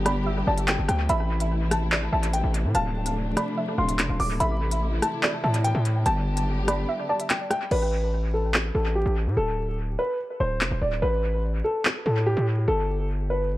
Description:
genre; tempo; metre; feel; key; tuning
hip hop, drill; 145 BPM; 4/4; half-time; A minor; A4 = 440 Hz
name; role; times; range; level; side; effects
warm studio string section; sustained chords; 0.0-7.7 s; C3 to G4; -31 LUFS; left 1 dB; none
distorted 808-style bass; bass; 0.0-13.6 s; D1 to A2; -25 LUFS; equal; distortion
dark upright piano; melody; 0.1-13.5 s; G4 to D6; -28 LUFS; equal; low-pass filter, dub echo
soft round pluck; second line; 0.1-7.7 s; D5 to G5; -33 LUFS; right 3 dB; chorus, dub echo
drill drum kit; drums; 0.1-11.9 s; crash cymbal, handclaps, hi-hat, rim click; -28 LUFS; equal; dub echo
room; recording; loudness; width
little or no reverb; echo-heavy mix, vinyl crackle; -22 LUFS; side -16 dB against mid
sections
0.0-7.7 A section; 7.7-13.6 B section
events
kick muted 6.9-7.7; hi-hats muted 7.7-13.6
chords
0.0 G; 1.1 Am; 2.7 Dm7; 4.4 Am; 6.1 G; 7.7 Asus2; 9.4 D7(no3); 11.0 Asus2; 12.7 G5

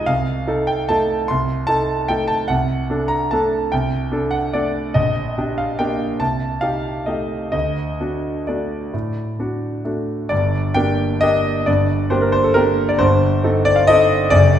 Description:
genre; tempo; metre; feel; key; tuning
classical, piano waltz; 125-156 BPM; 3/4; rubato; G minor; A4 = 441 Hz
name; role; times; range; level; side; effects
clear concert grand piano; solo; 0.0-14.6 s; F#1 to C6; -16 LUFS; equal; none
room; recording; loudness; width
wet scoring stage reverb, RT60 1.5 s; recorded in a church or concert hall; -17 LUFS; side -10 dB against mid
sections
0.0-10.3 A section; 10.3-14.6 B section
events
none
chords
0.1 Adim/C; 2.5 D7/C; 5.0 Gm/Bb; 6.2 Am7b5/C; 7.5 D; 10.3 Gm; 13.0 Am7b5/G

